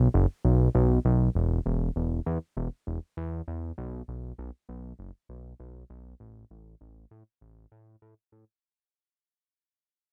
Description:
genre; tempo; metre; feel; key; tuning
synthwave; 99 BPM; 4/4; straight; unclear; A4 = 441 Hz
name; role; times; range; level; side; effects
fat analog bass; bass; 0.0-8.4 s; E1 to A2; -28 LUFS; equal; none
room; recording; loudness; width
little or no reverb; bright 1980s-style digital production; -28 LUFS; mono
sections
0.0-8.6 A section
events
fade-out 0.0-8.6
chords
none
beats
0.14 0.75 | 1.35 1.96 2.56 3.17 | 3.78 4.38 4.99 5.60 | 6.20 6.81 7.41 8.02

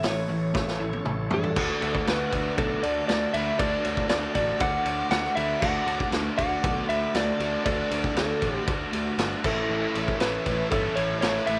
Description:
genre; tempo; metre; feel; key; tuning
classic rock; 118 BPM; 4/4; straight; D major; A4 = 440 Hz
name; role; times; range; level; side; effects
electric slide guitar; melody; 0.0-11.6 s; A4 to F#5; -31 LUFS; equal; none
bright upright piano; accompaniment; 0.0-11.6 s; E4 to E5; -41 LUFS; equal; none
tonewheel organ; sustained chords; 0.0-11.6 s; C#4 to D5; -44 LUFS; equal; none
overdriven electric guitar; riff; 0.0-11.6 s; A2 to D4; -35 LUFS; equal; none
raw garage guitar; riff; 0.0-11.6 s; A2 to F#4; -37 LUFS; equal; none
fuzz picked electric bass; bass; 0.0-11.6 s; G1 to G2; -36 LUFS; equal; overdrive
vintage drum kit; drums; 0.0-11.6 s; crash cymbal, hi-hat, kick drum, ride cymbal, snare drum, toms; -31 LUFS; equal; none
octave-fuzz lead guitar; second line; 1.3-11.6 s; D4 to D5; -40 LUFS; equal; distortion
distorted electric guitar; riff; 9.7-11.6 s; A2 to E4; -38 LUFS; equal; none
room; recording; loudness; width
light reverb; none; -26 LUFS; mono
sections
0.0-1.6 A section; 1.6-11.6 B section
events
drum fill 0.6-1.6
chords
0.0 A; 1.6 D; 9.4 A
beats
0.04 0.55 1.06 | 1.57 2.08 2.58 3.09 | 3.60 4.11 4.61 5.12 | 5.63 6.14 6.64 7.15 | 7.66 8.17 8.68 9.19 | 9.70 10.21 10.72 11.23

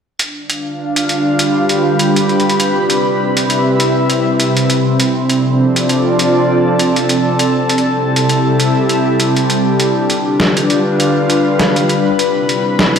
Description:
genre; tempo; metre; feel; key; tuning
glitch hop; 100 BPM; 4/4; swing 56% on 16ths; unclear; A4 = 440 Hz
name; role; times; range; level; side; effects
warbly tape-like pad; sustained chords; 0.7-13.0 s; C3 to B4; -16 LUFS; left 1 dB; chorus, built-in reverb, phaser
boom bap sampler-style drum kit; drums; 0.2-13.0 s; hi-hat, snare drum; -18 LUFS; equal; none
airy breathy pad; texture; 0.2-13.0 s; C4 to B5; -15 LUFS; equal; chorus
room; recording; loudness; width
moderate lush hall reverb, RT60 2.0 s; played on a big sound system in a bare room, stone room reverb; -11 LUFS; side -7 dB against mid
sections
0.2-13.0 A section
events
none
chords
0.2 G7; 2.6 Cmaj7; 5.0 Dm7; 7.4 Am7; 9.8 G7; 12.2 Cmaj7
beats
| 0.20 0.80 1.40 2.00 | 2.60 3.19 3.79 4.39 | 5.00 5.59 6.20 6.79 | 7.39 8.00 8.60 9.20 | 9.79 10.39 10.99 11.60 | 12.20 12.79

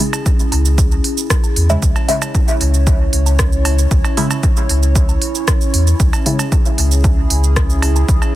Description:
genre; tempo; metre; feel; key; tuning
dub techno; 115 BPM; 4/4; straight; C# minor; A4 = 439 Hz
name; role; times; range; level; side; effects
dark analog pad; sustained chords; 0.0-8.4 s; C#4 to C#5; -23 LUFS; right 1 dB; chorus, phaser, sidechain pumping
filtered dub chord stab; stabs; 0.0-6.4 s; C#3 to E4; -22 LUFS; equal; chorus, phaser, cassette tape, sidechain pumping, dub echo
deep house drum kit; drums; 0.0-8.3 s; hi-hat, rim click, shaker; -21 LUFS; right 2 dB; soft clipping on snare
cowbell and woodblock; percussion; 0.1-8.3 s; none; -28 LUFS; right 4 dB; sidechain pumping on perc, dub echo
electronic kick drum; drums; 0.3-8.2 s; none; -15 LUFS; equal; none
warm sub bass; bass; 0.5-8.2 s; C#2 to E2; -14 LUFS; equal; sidechain pumping
room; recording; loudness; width
digital ambience; dense, heavily limited modern master; -12 LUFS; side -15 dB against mid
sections
0.0-8.4 A section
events
none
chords
0.0 C#m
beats
0.26 0.78 1.30 | 1.82 2.35 2.87 3.39 | 3.91 4.43 4.96 5.48 | 6.00 6.52 7.04 7.56 | 8.09

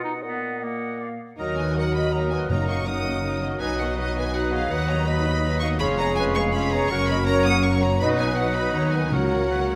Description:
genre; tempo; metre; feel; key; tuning
quick classical-period movement for symphony orchestra; 163 BPM; 3/4; rubato; Eb minor, F# major from 5.8 s; A4 = 440 Hz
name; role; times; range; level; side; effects
bright clarinet; second line; 0.0-9.8 s; Bb3 to B4; -34 LUFS; equal; none
silver concert flute; second line; 0.0-9.8 s; F#4 to F#5; -33 LUFS; equal; none
warm oboe; second line; 0.0-9.8 s; C#5 to D#5; -36 LUFS; equal; none
mellow bassoon; accompaniment; 0.0-9.8 s; Bb2 to G#3; -33 LUFS; equal; none
clear chamber violin section; melody; 1.4-9.8 s; D#5 to Eb6; -33 LUFS; equal; none
rich chamber violin section; second line; 1.4-9.8 s; Eb4 to Eb5; -35 LUFS; equal; none
rich chamber viola section; accompaniment; 1.4-9.8 s; Eb3 to Eb4; -35 LUFS; equal; none
dark French horn section; sustained chords; 1.4-9.8 s; F#3 to Gb4; -32 LUFS; equal; none
clear chamber cello section; bass; 1.4-9.8 s; Eb2 to D#3; -32 LUFS; equal; none
rich chamber double bass section; bass; 1.4-9.8 s; E#1 to Eb2; -30 LUFS; equal; none
timpani; percussion; 2.5-3.0, 9.1-9.7 s; Gb2 to C#3; -31 LUFS; equal; none
room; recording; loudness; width
wet recital hall reverb, RT60 1.6 s; none; -23 LUFS; mono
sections
0.0-1.4 A section; 1.4-9.8 B section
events
none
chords
0.2 Ebm/Bb; 1.4 Ebm; 2.5 Ebm/Gb; 3.6 B; 4.7 B/D#; 5.8 C#7/E#; 6.9 F#; 8.0 B; 9.1 F#/C#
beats
| 0.23 0.62 1.00 | 1.39 1.76 2.13 | 2.50 2.87 3.24 | 3.61 3.98 4.35 | 4.71 5.07 5.44 | 5.81 6.18 6.54 | 6.91 7.28 7.64 | 8.01 8.38 8.75 | 9.13 9.51

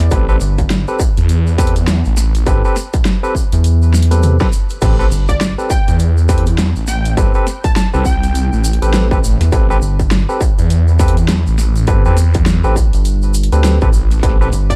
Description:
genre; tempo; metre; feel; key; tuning
glitch hop; 102 BPM; 4/4; swing 60% on 16ths; A minor; A4 = 440 Hz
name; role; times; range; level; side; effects
plucky unison lead; melody; 0.0-0.1, 5.3-8.9, 14.7-14.8 s; D5 to A5; -28 LUFS; equal; digital delay
rubbery square bass; bass; 0.0-5.6, 9.4-14.8 s; G1 to E2; -15 LUFS; equal; none
dubstep drum kit; drums; 0.0-14.8 s; crash cymbal, hi-hat, snare drum, toms; -23 LUFS; equal; none
barky tine electric piano; stabs; 0.1-14.5 s; C4 to B4; -24 LUFS; equal; overdrive, vintage 12-bit sampler grit, sidechain pumping, digital delay
phased detuned saw bass; bass; 0.1-14.5 s; G1 to E2; -16 LUFS; equal; phaser, overdrive
electronic kick drum; drums; 0.1-14.8 s; none; -18 LUFS; equal; distortion
tube shaker; percussion; 0.1-14.8 s; none; -33 LUFS; equal; none
room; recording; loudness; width
digital ambience; dark, warm production; -14 LUFS; mono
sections
0.0-14.8 A section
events
drum fill 3.9-4.8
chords
0.0 Am9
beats
| 0.11 0.70 1.29 1.88 | 2.47 3.06 3.64 4.23 | 4.82 5.41 6.00 6.58 | 7.17 7.76 8.35 8.94 | 9.53 10.11 10.70 11.29 | 11.88 12.47 13.05 13.64 | 14.23

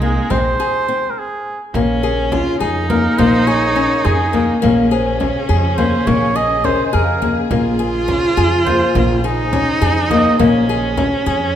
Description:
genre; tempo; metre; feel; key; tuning
contemporary instrumental, chamber music in an uneven meter; 208 BPM (eighths); 5/8; straight; Bb minor; A4 = 440 Hz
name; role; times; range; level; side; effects
warm oboe; melody; 0.0-10.4 s; Ab4 to Eb5; -20 LUFS; right 3 dB; none
clear viola; second line; 0.0-11.6 s; Ab3 to F4; -20 LUFS; right 2 dB; none
muted studio string section; sustained chords; 0.0-11.6 s; Bb2 to C5; -28 LUFS; left 2 dB; none
nylon-string guitar; arpeggios; 0.0-11.5 s; Bb3 to Ab4; -18 LUFS; left 4 dB; none
upright bass; bass; 0.0-11.6 s; Bb1 to F2; -20 LUFS; right 2 dB; none
frame drum; percussion; 0.0-11.4 s; none; -26 LUFS; right 2 dB; none
worn celesta; texture; 2.0-10.8 s; Bb4 to F5; -27 LUFS; left 4 dB; none
room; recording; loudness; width
wet recital hall reverb, RT60 1.8 s; none; -13 LUFS; side -10 dB against mid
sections
0.0-1.7 A section; 1.7-11.6 B section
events
stop 1.0-1.7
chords
0.0 Fm/Bb (rootless); 1.7 Bbm7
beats
0.02 | 0.31 0.59 0.88 1.17 1.46 | 1.75 2.03 2.32 2.61 2.90 | 3.19 3.47 3.76 4.05 4.34 | 4.63 4.92 5.20 5.49 5.78 | 6.07 6.36 6.64 6.93 7.22 | 7.51 7.80 8.09 8.38 8.66 | 8.95 9.24 9.53 9.82 10.11 | 10.40 10.69 10.98 11.27

